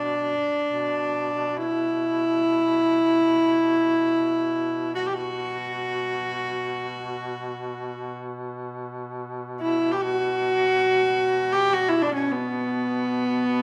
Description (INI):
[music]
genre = caucasian folk, Caucasian lament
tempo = free time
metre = none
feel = none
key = B minor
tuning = A4 = 442 Hz
[part]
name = warm cello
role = melody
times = 0.0-13.6 s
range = B3 to G4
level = -24 LUFS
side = equal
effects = none
[part]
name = clear duduk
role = drone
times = 0.0-13.6 s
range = B2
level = -36 LUFS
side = equal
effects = none
[sound]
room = moderate recital hall reverb, RT60 1.5 s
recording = none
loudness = -24 LUFS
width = mono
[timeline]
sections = 0.0-13.6 A section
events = none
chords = none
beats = free time